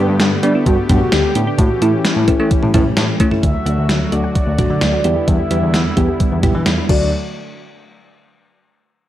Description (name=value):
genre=synth-pop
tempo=130 BPM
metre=4/4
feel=straight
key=D major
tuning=A4 = 440 Hz
part: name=soft electric-piano-like synth keys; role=accompaniment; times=0.0-7.1 s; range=A3 to G4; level=-21 LUFS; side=right 1 dB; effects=chorus, low-pass filter
part: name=brassy analog pad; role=sustained chords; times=0.0-7.1 s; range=D3 to G4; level=-23 LUFS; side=left 2 dB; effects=chorus, low-pass filter
part: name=bell-like tine electric piano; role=bass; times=0.0-7.1 s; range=D2 to A3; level=-18 LUFS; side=equal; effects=none
part: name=gated 80s digital drum machine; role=drums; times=0.2-7.0 s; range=cowbell, crash cymbal, hi-hat, kick drum, snare drum, toms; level=-17 LUFS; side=equal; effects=gated reverb, gated reverb snare, overdrive
part: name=mellow horn-like synth lead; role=melody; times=0.4-7.1 s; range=D4 to E5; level=-22 LUFS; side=equal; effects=chorus, phaser, low-pass filter, analog delay
part: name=soft round pluck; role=arpeggios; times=3.4-7.1 s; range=F#3 to F#5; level=-26 LUFS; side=right 1 dB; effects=none
room=light reverb, digital ambience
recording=dry, gritty hardware recording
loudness=-13 LUFS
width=side -13 dB against mid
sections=0.0-3.4 A section; 3.4-7.1 B section; 7.1-9.0 C section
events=filter sweep 3.4-7.1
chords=0.0 Gadd9; 1.6 A7; 3.4 D; 5.0 Em7; 6.9 D; 7.1 N.C.